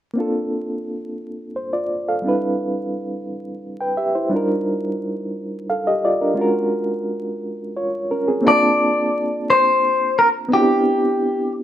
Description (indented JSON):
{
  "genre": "R&B",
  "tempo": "58 BPM (dotted quarters)",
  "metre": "6/8",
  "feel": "straight",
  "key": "Bb major",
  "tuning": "A4 = 441 Hz",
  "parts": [
    { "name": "bright reed electric piano", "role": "accompaniment", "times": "0.1-11.6 s", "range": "G3 to A5", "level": "-20 LUFS", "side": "right 1 dB", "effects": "medium tremolo, plate reverb" },
    { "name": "clean electric guitar", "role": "melody", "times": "8.5-11.5 s", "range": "G4 to D5", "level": "-16 LUFS", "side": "left 1 dB", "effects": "slapback echo, plate reverb" }
  ],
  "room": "moderate studio reverb, RT60 0.6 s",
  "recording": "rough home demo mix, vinyl crackle",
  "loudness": "-17 LUFS",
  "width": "side -11 dB against mid",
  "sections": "0.2-8.4 A section; 8.4-11.6 B section",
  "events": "none",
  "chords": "0.2 Bbmaj9; 2.2 Cmaj9; 4.3 Ebmaj9; 6.4 Gbmaj9; 8.4 Bbmaj9; 10.5 Cmaj9",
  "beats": "| 0.17 1.20 | 2.23 3.27 | 4.30 5.34 | 6.37 7.41 | 8.44 9.48 | 10.51 11.55"
}